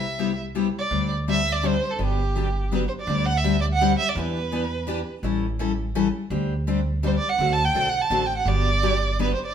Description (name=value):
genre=acoustic string swing (jazz manouche)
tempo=167 BPM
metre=3/4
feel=swing 63% on 8ths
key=unclear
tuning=A4 = 441 Hz
part: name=warm violin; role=melody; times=0.0-9.5 s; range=G4 to A5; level=-24 LUFS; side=right 4 dB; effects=none
part: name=picked steel-string acoustic guitar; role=accompaniment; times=0.0-9.3 s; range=C3 to A4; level=-26 LUFS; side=left 5 dB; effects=none
part: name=upright bass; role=bass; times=0.0-9.3 s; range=G1 to E2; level=-26 LUFS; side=right 1 dB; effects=none
room=moderate stone room reverb, RT60 1.1 s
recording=band playing live in one room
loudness=-21 LUFS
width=side -8 dB against mid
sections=0.0-3.1 A section; 3.1-9.5 B section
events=none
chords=0.0 Cmaj7; 0.9 D7sus4; 2.0 Gmaj7; 3.1 D7sus4; 4.2 Em7; 5.2 A7; 6.3 D7sus4; 7.4 D7; 8.5 Gmaj7